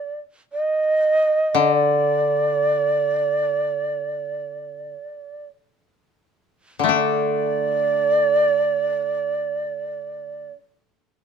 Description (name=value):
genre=japanese traditional, Japanese chamber music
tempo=free time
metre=none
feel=none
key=unclear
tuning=A4 = 440 Hz
part: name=breathy long shakuhachi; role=melody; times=0.0-10.5 s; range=D5 to Eb5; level=-20 LUFS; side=right 3 dB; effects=none
part: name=koto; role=accompaniment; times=1.5-10.6 s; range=D3 to D4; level=-23 LUFS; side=left 5 dB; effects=none
room=light reverb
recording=none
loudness=-18 LUFS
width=side -6 dB against mid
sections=0.0-6.9 A section; 6.9-11.2 B section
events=slowing down 1.1-6.9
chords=none